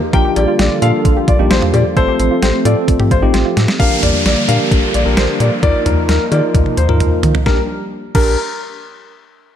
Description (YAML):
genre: synth-pop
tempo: 131 BPM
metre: 4/4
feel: straight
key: Bb major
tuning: A4 = 439 Hz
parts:
  - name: sweeping resonant pad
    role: sustained chords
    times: 0.0-7.7 s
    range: D3 to G4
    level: -21 LUFS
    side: right 1 dB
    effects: lush chorus
  - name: soft round pluck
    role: arpeggios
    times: 0.0-3.8 s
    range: Eb4 to Bb4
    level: -23 LUFS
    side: right 5 dB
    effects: chorus, digital delay
  - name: dark concert grand piano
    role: second line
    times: 0.1-8.4 s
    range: Bb4 to G5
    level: -20 LUFS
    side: left 4 dB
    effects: digital delay
  - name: tine electric piano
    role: accompaniment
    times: 0.1-8.4 s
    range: A3 to Bb4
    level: -19 LUFS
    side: equal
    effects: medium stereo tremolo
  - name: rubbery square bass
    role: bass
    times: 0.1-8.4 s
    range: A1 to Eb3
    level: -16 LUFS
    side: equal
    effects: none
  - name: detuned 8-bit digital drum machine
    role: drums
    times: 0.1-8.3 s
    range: cowbell, crash cymbal, hi-hat, kick drum, snare drum, toms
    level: -16 LUFS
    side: equal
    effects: overdrive
  - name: downlifter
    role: sound effects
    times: 3.8-7.5 s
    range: none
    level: -22 LUFS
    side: equal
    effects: none
room: light reverb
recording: none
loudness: -11 LUFS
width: side -9 dB against mid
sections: 0.0-3.8 A section; 3.8-7.5 B section; 7.5-9.3 C section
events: drum fill 3.3-3.8, 6.5-7.5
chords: 0.1 Bb6; 2.0 F/A; 3.8 Bb6; 5.6 Ebsus2; 7.5 Bb6